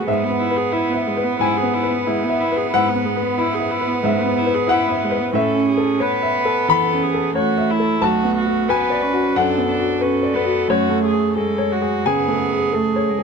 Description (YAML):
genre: neoclassical piano and strings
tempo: 90 BPM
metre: 4/4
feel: rubato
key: unclear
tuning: A4 = 440 Hz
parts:
  - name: warm cello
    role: second line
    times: 0.0-13.2 s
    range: G#3 to D4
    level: -22 LUFS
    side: right 6 dB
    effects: none
  - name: clear upright piano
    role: accompaniment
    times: 0.0-13.2 s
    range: B1 to B5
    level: -19 LUFS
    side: left 3 dB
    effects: none
  - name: rich viola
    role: accompaniment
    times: 0.0-13.2 s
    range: G#3 to B4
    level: -23 LUFS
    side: right 1 dB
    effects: none
room: light reverb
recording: close, detailed microphones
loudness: -16 LUFS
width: side -5 dB against mid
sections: 0.0-13.2 A section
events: none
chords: 0.1 E/G#; 5.3 A; 8.0 Bm7; 10.7 F#madd9